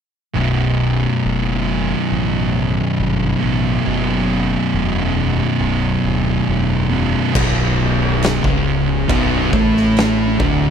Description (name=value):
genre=stoner and doom metal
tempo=69 BPM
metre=4/4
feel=straight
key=B minor from 7.4 s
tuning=A4 = 439 Hz
part: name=thick fuzz guitar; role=riff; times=0.3-10.7 s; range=B1 to A3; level=-19 LUFS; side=left 8 dB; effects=distortion
part: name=thick fuzz guitar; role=riff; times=0.3-10.7 s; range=B1 to A3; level=-19 LUFS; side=right 10 dB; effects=distortion
part: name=fuzz fingered electric bass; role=bass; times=0.4-10.7 s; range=B0 to A1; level=-22 LUFS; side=equal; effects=overdrive
part: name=oversized low-tuned drum kit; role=drums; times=7.3-10.6 s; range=crash cymbal, kick drum, snare drum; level=-20 LUFS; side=equal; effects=none
room=small room ambience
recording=none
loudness=-15 LUFS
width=side -7 dB against mid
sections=0.4-7.4 A section; 7.4-10.7 B section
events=none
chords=0.4 B5; 7.4 Bm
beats=| 0.36 1.24 2.11 2.99 | 3.86 4.74 5.61 6.48 | 7.35 8.22 9.09 9.96